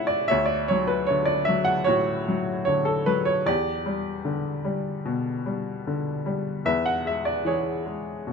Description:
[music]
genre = classical, lyrical solo piano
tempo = 75 BPM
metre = 4/4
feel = rubato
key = unclear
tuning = A4 = 440 Hz
[part]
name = clear upright piano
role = solo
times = 0.0-8.3 s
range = D2 to F#5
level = -23 LUFS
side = equal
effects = none
[sound]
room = light reverb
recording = close, detailed microphones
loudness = -23 LUFS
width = side -5 dB against mid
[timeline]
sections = 0.0-8.3 A section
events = none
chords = 0.3 Dmaj7; 3.5 Em7; 6.7 C#m7/E

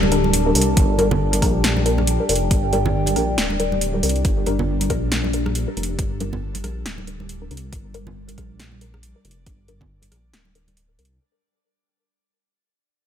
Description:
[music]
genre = deep dubstep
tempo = 138 BPM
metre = 4/4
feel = swing 58% on 16ths, half-time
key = G minor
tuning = A4 = 440 Hz
[part]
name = overtone-sweeping drone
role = sustained chords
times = 0.0-11.2 s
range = G3 to D5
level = -26 LUFS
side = left 1 dB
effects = chorus, built-in reverb
[part]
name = dark detuned saw bass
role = bass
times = 0.0-11.2 s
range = D1 to C2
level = -23 LUFS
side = equal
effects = none
[part]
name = congas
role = percussion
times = 0.0-10.8 s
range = none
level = -27 LUFS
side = right 3 dB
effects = none
[part]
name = filtered dub chord stab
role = stabs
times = 0.1-11.1 s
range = G3 to Bb4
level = -25 LUFS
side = left 1 dB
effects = phaser, lush chorus, cassette tape, dub echo
[part]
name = deep house drum kit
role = drums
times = 0.1-11.1 s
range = hi-hat, rim click, snare drum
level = -24 LUFS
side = equal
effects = overdrive, studio reverb
[part]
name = electronic kick drum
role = drums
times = 0.8-9.9 s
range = none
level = -21 LUFS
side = equal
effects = overdrive, studio reverb
[sound]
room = light reverb, digital ambience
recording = none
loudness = -18 LUFS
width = side -9 dB against mid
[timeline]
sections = 0.0-11.2 A section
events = fade-out 0.0-11.2; filter sweep on detuned saw bass 0.0-11.2; filter sweep on synth drone 0.0-11.2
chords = 0.0 Gm

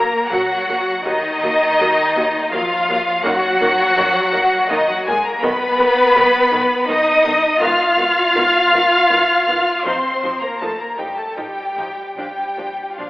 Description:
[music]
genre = classical, slow romantic movement for string orchestra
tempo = 81 BPM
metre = 3/4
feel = rubato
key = unclear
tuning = A4 = 442 Hz
[part]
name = rich studio violin section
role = melody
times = 0.0-13.1 s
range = D#5 to F6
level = -19 LUFS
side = left 1 dB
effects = none
[part]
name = warm studio violin section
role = second line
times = 0.0-13.1 s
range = D#4 to F5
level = -18 LUFS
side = equal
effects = none
[part]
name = rich studio viola section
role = accompaniment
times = 0.0-13.1 s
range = D#3 to Eb4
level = -26 LUFS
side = equal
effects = none
[part]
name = rich studio cello section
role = bass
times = 0.0-13.1 s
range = D#3 to F4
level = -20 LUFS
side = equal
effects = none
[part]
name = warm studio double bass section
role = bass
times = 0.3-13.1 s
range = Ab1 to F#2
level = -33 LUFS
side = right 1 dB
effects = none
[sound]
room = wet concert hall reverb, RT60 1.9 s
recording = telephone sound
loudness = -14 LUFS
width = side -18 dB against mid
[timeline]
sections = 0.0-13.1 A section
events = none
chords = 0.0 F#/A#; 1.0 D#m; 3.2 D#m/F#; 5.4 B; 7.6 Fm7b5/Ab; 9.9 F7/A; 12.2 Bb

